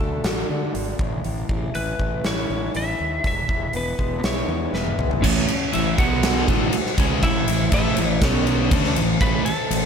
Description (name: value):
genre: quiet-loud alternative rock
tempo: 120 BPM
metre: 4/4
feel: straight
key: A major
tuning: A4 = 440 Hz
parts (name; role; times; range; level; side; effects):
- lightly driven lead guitar; melody; 0.0-9.9 s; C#4 to B5; -27 LUFS; equal; none
- picked acoustic archtop guitar; arpeggios; 0.0-5.2 s; E2 to F#4; -30 LUFS; left 6 dB; slapback echo, analog delay
- fuzz fingered electric bass; bass; 0.0-9.9 s; E1 to D3; -27 LUFS; equal; overdrive
- huge arena drum kit; drums; 0.2-9.8 s; crash cymbal, hi-hat, kick drum, ride cymbal, snare drum, toms; -22 LUFS; equal; none
- fuzz guitar; riff; 5.2-9.9 s; A2 to D4; -25 LUFS; right 12 dB; distortion, slapback echo
- scooped high-gain guitar; riff; 5.2-9.9 s; A2 to D4; -26 LUFS; left 12 dB; distortion
room: light reverb, studio reverb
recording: none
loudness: -19 LUFS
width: side -7 dB against mid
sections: 0.0-5.2 A section; 5.2-9.9 B section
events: drum fill 4.7-5.2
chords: 0.0 D; 1.0 A; 3.2 E; 5.2 A; 6.0 B5; 6.5 A; 8.2 B5; 8.7 A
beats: 0.24 0.74 | 1.24 1.74 2.24 2.74 | 3.24 3.74 4.24 4.74 | 5.24 5.74 6.23 6.73 | 7.23 7.72 8.22 8.71 | 9.21 9.71